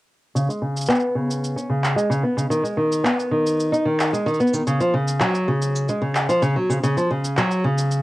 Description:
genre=folktronica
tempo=111 BPM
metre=4/4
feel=straight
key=unclear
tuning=A4 = 440 Hz
part: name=nylon-string guitar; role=arpeggios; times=0.3-8.0 s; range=Db3 to Eb4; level=-19 LUFS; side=equal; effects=low-pass filter, cassette tape, tape echo
part: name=electronic cabasa and handclaps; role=drums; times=0.4-8.0 s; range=none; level=-25 LUFS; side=equal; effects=cassette tape
room=moderate booth ambience, RT60 0.2 s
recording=home recording on cassette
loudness=-19 LUFS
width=side -18 dB against mid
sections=0.3-8.0 A section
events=filter sweep on nylon-string guitar 0.3-8.0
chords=none

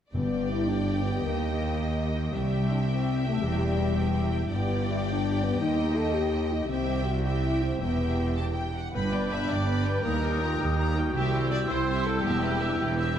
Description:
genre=cinematic, heroic adventure film score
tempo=110 BPM (dotted quarters)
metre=6/8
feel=straight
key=G major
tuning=A4 = 440 Hz
part: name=rich symphonic violin section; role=melody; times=0.1-13.2 s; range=E5 to B5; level=-39 LUFS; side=left 2 dB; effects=none
part: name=rich symphonic violin section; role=second line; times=0.1-13.1 s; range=G4 to A5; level=-35 LUFS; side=left 1 dB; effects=none
part: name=rich symphonic viola section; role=accompaniment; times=0.1-13.2 s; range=Bb3 to D5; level=-37 LUFS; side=right 1 dB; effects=none
part: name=mellow French horn section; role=sustained chords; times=0.1-13.2 s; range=G3 to A4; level=-31 LUFS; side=left 2 dB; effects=none
part: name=concert harp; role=arpeggios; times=0.1-13.2 s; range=E2 to E5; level=-36 LUFS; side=left 8 dB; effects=none
part: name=clear symphonic cello section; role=bass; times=0.1-13.2 s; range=C2 to G2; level=-31 LUFS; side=right 2 dB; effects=none
part: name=clear symphonic double bass section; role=bass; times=0.1-13.2 s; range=E1 to Eb2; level=-31 LUFS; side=right 2 dB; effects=none
part: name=timpani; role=percussion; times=0.1-0.7 s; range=G2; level=-35 LUFS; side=left 1 dB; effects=none
part: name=clear oboe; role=second line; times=8.9-13.2 s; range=G5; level=-35 LUFS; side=equal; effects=none
part: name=warm clarinet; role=second line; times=8.9-13.2 s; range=B3 to G4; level=-36 LUFS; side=left 2 dB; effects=none
part: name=flute section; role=second line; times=9.0-13.2 s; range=D6 to E6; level=-37 LUFS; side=left 1 dB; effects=none
room=wet scoring stage reverb, RT60 1.9 s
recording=none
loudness=-25 LUFS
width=side -9 dB against mid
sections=0.1-8.9 A section; 8.9-13.2 A section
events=none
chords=0.1 G; 1.2 Eb; 2.3 C; 3.4 Em; 4.5 G; 5.6 Eb; 6.7 C; 7.8 Em; 8.9 G; 10.1 Eb; 11.1 C; 12.2 Em

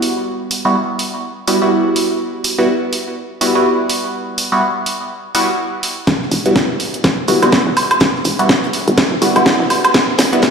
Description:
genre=bass house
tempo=124 BPM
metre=4/4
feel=swing 59% on 16ths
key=E minor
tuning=A4 = 440 Hz
part: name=band-passed chord stab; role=stabs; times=0.0-10.4 s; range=G3 to F#4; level=-16 LUFS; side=right 1 dB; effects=phaser, sidechain pumping, tape echo
part: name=house drum kit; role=drums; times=0.0-10.5 s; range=hi-hat, snare drum, woodblock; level=-16 LUFS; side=equal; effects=high-pass filter on hats, high-pass filter on perc, high-pass filter on snare, high-pass filter on room
part: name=hollow knocking FM bass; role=bass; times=6.1-10.4 s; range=E1 to G1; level=-19 LUFS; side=equal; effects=sidechain pumping, high-pass filter
part: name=electronic kick drum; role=drums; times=6.1-10.5 s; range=none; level=-19 LUFS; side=equal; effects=high-pass filter on kick, high-pass filter on room
part: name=oversized low-tuned drum kit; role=drums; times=6.1-10.5 s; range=hi-hat, snare drum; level=-29 LUFS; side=right 1 dB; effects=none
room=wet plate reverb, RT60 2.1 s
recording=played on a big sound system in a bare room, large studio reverb, high-pass filter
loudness=-13 LUFS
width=side -6 dB against mid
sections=0.0-6.1 A section; 6.1-10.5 B section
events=filter sweep on synth stab 0.0-6.1; build-up 6.1-10.5; drum fill 6.1-10.5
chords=0.0 Emadd9

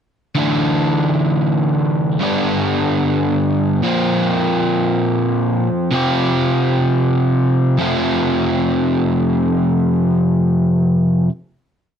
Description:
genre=rock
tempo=free time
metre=none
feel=none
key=F major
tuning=A4 = 440 Hz
part: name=crunchy overdriven guitar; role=solo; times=0.3-11.3 s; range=F2 to G4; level=-14 LUFS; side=equal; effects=none
room=moderate studio reverb, RT60 0.5 s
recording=dry, close 1970s-style studio recording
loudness=-14 LUFS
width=side -8 dB against mid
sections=0.4-7.8 pre-chorus; 7.8-11.5 final chord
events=none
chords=0.4 Dsus2; 2.2 G; 3.8 Bbsus2; 5.9 Csus4; 7.8 F

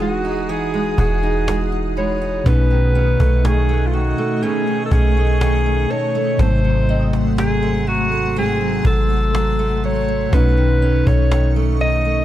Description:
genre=contemporary R&B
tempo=61 BPM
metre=4/4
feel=straight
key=unclear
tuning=A4 = 440 Hz
part: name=warm alto saxophone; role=melody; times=0.0-12.2 s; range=F4 to D#5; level=-22 LUFS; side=equal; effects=none
part: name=mellow tine electric piano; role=accompaniment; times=0.0-12.2 s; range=G#2 to G#4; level=-22 LUFS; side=left 1 dB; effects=slow stereo tremolo
part: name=granular cloud pad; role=sustained chords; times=0.0-12.2 s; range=A3 to D#6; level=-26 LUFS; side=left 1 dB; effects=built-in reverb
part: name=fingerpicked steel-string acoustic guitar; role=arpeggios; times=0.0-12.2 s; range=G#2 to F#4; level=-24 LUFS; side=right 6 dB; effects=none
part: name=warm 808-style bass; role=bass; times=0.0-12.2 s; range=E1 to B1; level=-19 LUFS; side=equal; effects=none
part: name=glassy wavetable pluck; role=texture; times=0.0-9.4 s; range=D#5 to F#6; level=-35 LUFS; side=left 1 dB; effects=chorus, ping-pong delay
part: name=cajon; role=drums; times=0.5-11.5 s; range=none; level=-22 LUFS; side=equal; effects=none
room=studio reverb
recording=dark, warm production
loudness=-15 LUFS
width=side -13 dB against mid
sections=0.0-12.2 A section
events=none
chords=0.0 Emaj9; 2.5 B9; 6.4 G#7b9; 10.3 B9

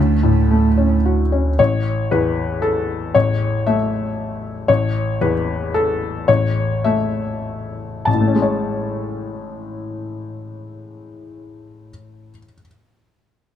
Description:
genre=neoclassical piano and strings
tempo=94-117 BPM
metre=3/4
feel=rubato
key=A major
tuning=A4 = 437 Hz
part: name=warm cello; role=second line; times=0.0-1.0 s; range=A3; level=-20 LUFS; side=right 12 dB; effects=none
part: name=felt-muted upright piano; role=accompaniment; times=0.0-12.7 s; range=A1 to A5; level=-18 LUFS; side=left 3 dB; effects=none
part: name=pure sine sub bass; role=bass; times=0.0-1.6 s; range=D2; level=-17 LUFS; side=equal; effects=none
room=little or no reverb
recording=close, detailed microphones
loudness=-16 LUFS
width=side -10 dB against mid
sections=0.0-1.6 A section; 1.6-8.1 B section; 8.1-11.9 C section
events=slowing down 3.9-8.1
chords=0.0 Dmaj7; 1.6 A; 8.1 Amaj7

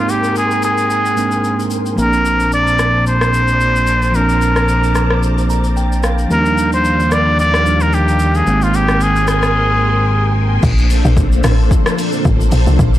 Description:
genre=amapiano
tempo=111 BPM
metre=4/4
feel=swing 55% on 16ths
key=Bb major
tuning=A4 = 440 Hz
part: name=trumpet with straight mute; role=melody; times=0.0-10.3 s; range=F4 to D5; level=-16 LUFS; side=left 1 dB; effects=analog delay
part: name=mellow tine electric piano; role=accompaniment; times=0.0-10.6 s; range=Ab2 to Bb5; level=-19 LUFS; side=right 3 dB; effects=auto-pan
part: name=string machine, cellos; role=sustained chords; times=0.0-13.0 s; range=F3 to D6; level=-22 LUFS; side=equal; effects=phaser, ensemble chorus, sidechain pumping
part: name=deep house drum kit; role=drums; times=0.1-13.0 s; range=crash cymbal, hi-hat, kick drum, rim click, shaker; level=-20 LUFS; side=left 1 dB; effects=none
part: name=fat analog bass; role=bass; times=2.0-10.6 s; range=Ab1 to Eb2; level=-16 LUFS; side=equal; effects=none
part: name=deep log drum bass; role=bass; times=10.6-13.0 s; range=A1 to C2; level=-12 LUFS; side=equal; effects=none
room=little or no reverb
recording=dry, gritty hardware recording, cassette tape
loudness=-12 LUFS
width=side -13 dB against mid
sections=0.0-10.6 A section; 10.6-13.0 B section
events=tine electric piano fill 5.2-6.3; drums muted 9.5-10.6; drop 10.6-13.0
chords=0.0 Abmaj9; 2.0 Bbmaj9; 6.3 Ebmaj9; 8.5 Abmaj9; 10.6 Bbmaj9

